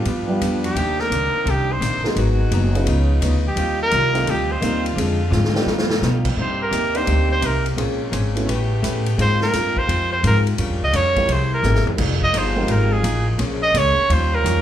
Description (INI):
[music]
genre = jazz, big band swing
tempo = 171 BPM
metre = 4/4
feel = swing 66% on 8ths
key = C minor from 6.4 s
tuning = A4 = 440 Hz
[part]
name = dark grand piano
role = accompaniment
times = 0.0-13.0 s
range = G3 to Bb4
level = -26 LUFS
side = right 3 dB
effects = slapback echo
[part]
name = clear saxophone section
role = sustained chords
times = 0.0-14.6 s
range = C3 to G4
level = -30 LUFS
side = equal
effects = none
[part]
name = upright bass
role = bass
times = 0.0-14.6 s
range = F1 to B2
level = -20 LUFS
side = equal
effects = none
[part]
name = hollow-body jazz guitar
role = accompaniment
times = 0.1-14.6 s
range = G2 to C5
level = -28 LUFS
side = left 5 dB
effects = slapback echo
[part]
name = swinging big-band drum kit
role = drums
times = 0.1-14.6 s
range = crash cymbal, hi-hat, kick drum, ride cymbal, snare drum, toms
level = -27 LUFS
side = left 1 dB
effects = none
[part]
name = clear trumpet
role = melody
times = 0.7-14.6 s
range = G4 to Eb5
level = -20 LUFS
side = right 1 dB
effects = slapback echo
[sound]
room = light reverb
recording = live gig heard through the venue's PA, club reverb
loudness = -17 LUFS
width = side -11 dB against mid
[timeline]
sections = 0.0-6.4 A section; 6.4-14.6 A section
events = trumpet solo 0.0-14.6; drum fill 5.3-6.0, 11.6-12.0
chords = 0.1 G7; 0.8 Cm9; 2.2 Abm7; 2.9 Db9; 3.6 Eb69; 5.0 Dm7b5; 5.7 G7b13; 6.4 Cm7; 7.8 Bbm9; 8.5 A9; 9.2 Ab69; 10.6 Gm7b5; 11.3 C7b13; 12.0 Fm11; 13.4 Bbm9; 14.1 Eb9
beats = 0.06 0.41 | 0.76 1.11 1.46 1.81 | 2.17 2.52 2.87 3.22 | 3.57 3.92 4.27 4.62 | 4.97 5.32 5.67 6.02 | 6.37 6.72 7.07 7.42 | 7.78 8.13 8.48 8.83 | 9.18 9.53 9.88 10.23 | 10.58 10.94 11.29 11.64 | 11.99 12.34 12.69 13.04 | 13.39 13.74 14.10 14.45